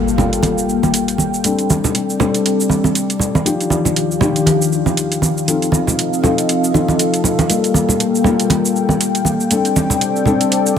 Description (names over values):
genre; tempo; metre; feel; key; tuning
afro house; 119 BPM; 4/4; swing 57% on 16ths; G minor; A4 = 441 Hz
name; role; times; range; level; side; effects
dark analog pad; sustained chords; 0.0-10.8 s; Eb3 to G5; -19 LUFS; left 1 dB; chorus
felt-muted upright piano; stabs; 0.0-10.8 s; F3 to A4; -18 LUFS; left 4 dB; low-pass filter, ping-pong delay
impact; sound effects; 0.0-1.4 s; none; -27 LUFS; equal; none
electronic shaker and hi-hat; drums; 0.1-10.8 s; none; -22 LUFS; right 3 dB; overdrive
congas; percussion; 0.2-10.8 s; none; -19 LUFS; right 3 dB; none
room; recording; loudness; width
moderate plate reverb, RT60 2.8 s; none; -13 LUFS; side -8 dB against mid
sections
0.0-10.8 A section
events
impact 0.0-1.4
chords
0.0 Gm9; 1.4 D7sus4; 3.5 Ebmaj9; 5.5 F7; 7.5 Gm9; 9.5 D7sus4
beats
0.44 0.94 | 1.44 1.95 2.45 2.96 | 3.46 3.96 4.47 4.97 | 5.48 5.98 6.49 6.99 | 7.50 8.00 8.50 9.01 | 9.51 10.02 10.52